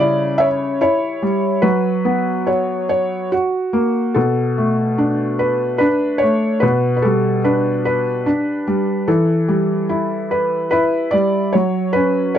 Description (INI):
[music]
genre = children's music, lullaby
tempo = 73 BPM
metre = 3/4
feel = straight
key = B minor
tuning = A4 = 440 Hz
[part]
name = felt-muted upright piano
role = solo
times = 0.0-12.4 s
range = B2 to E5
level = -15 LUFS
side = equal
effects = none
[sound]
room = light reverb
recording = dry, close 1970s-style studio recording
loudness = -15 LUFS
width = side -10 dB against mid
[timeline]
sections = 0.0-4.2 A section; 4.2-12.4 B section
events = none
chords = 0.0 C#dim; 1.6 F#sus4; 3.3 F#; 4.2 Bm7; 6.6 G/B; 9.1 Em; 11.5 F#5